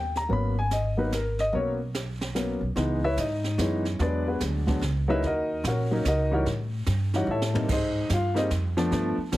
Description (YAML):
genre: jazz piano trio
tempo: 146 BPM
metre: 3/4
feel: swing 65% on 8ths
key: G# minor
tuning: A4 = 440 Hz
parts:
  - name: warm grand piano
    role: melody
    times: 0.0-9.4 s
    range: E3 to B5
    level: -26 LUFS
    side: left 1 dB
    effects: none
  - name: upright bass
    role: bass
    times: 0.0-9.4 s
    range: G#1 to A2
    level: -28 LUFS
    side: equal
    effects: none
  - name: jazz brush drum kit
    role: drums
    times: 0.2-9.4 s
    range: brushed snare drum, crash cymbal, hi-hat, kick drum, snare drum, toms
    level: -34 LUFS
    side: right 2 dB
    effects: none
room: light reverb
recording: heavily compressed radio sound, multiband compression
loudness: -24 LUFS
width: side -16 dB against mid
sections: 0.0-2.8 A section; 2.8-9.4 B section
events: drum fill 7.3-7.7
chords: 0.3 G#m11; 2.8 C#m7; 4.0 E9; 5.2 D#m7; 6.5 A7; 7.7 G#maj7